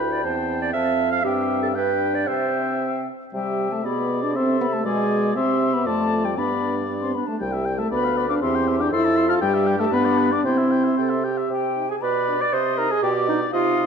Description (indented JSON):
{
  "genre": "quick classical-period movement for wind quintet",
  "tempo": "118 BPM",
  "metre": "2/4",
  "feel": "straight",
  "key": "C major",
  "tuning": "A4 = 440 Hz",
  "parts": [
    { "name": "mellow silver concert flute", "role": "melody", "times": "0.0-13.9 s", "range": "Eb5 to F6", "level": "-27 LUFS", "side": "left 9 dB", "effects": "none" },
    { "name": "warm oboe", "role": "second line", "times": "0.0-13.9 s", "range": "B4 to C6", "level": "-29 LUFS", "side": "left 4 dB", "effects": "none" },
    { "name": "mellow French horn", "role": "accompaniment", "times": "0.0-13.9 s", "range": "G3 to F4", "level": "-24 LUFS", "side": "equal", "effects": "none" },
    { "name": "warm clarinet", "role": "accompaniment", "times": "0.0-13.9 s", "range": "B3 to F5", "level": "-25 LUFS", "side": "right 7 dB", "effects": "none" },
    { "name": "mellow bassoon", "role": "bass", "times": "0.0-13.9 s", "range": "C2 to C3", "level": "-28 LUFS", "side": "right 2 dB", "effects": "none" }
  ],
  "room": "moderate scoring stage reverb, RT60 2.1 s",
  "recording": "dark, warm production",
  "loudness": "-19 LUFS",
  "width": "side -6 dB against mid",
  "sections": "0.0-3.3 A section; 3.3-11.5 B section; 11.5-13.9 B section",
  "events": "none",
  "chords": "0.2 C/E; 0.7 F; 1.2 C/G; 1.8 G; 2.3 C; 3.8 Bm6; 4.4 C; 4.9 Bm6; 5.4 C; 5.9 Dm/F; 6.4 G; 7.4 C; 7.9 Bdim/D; 8.4 C/E; 8.9 F; 9.4 Emadd11/G; 9.9 G; 10.5 C; 11.5 Cm; 12.0 Bm; 12.5 Cm; 13.0 Ebmaj7#5/B"
}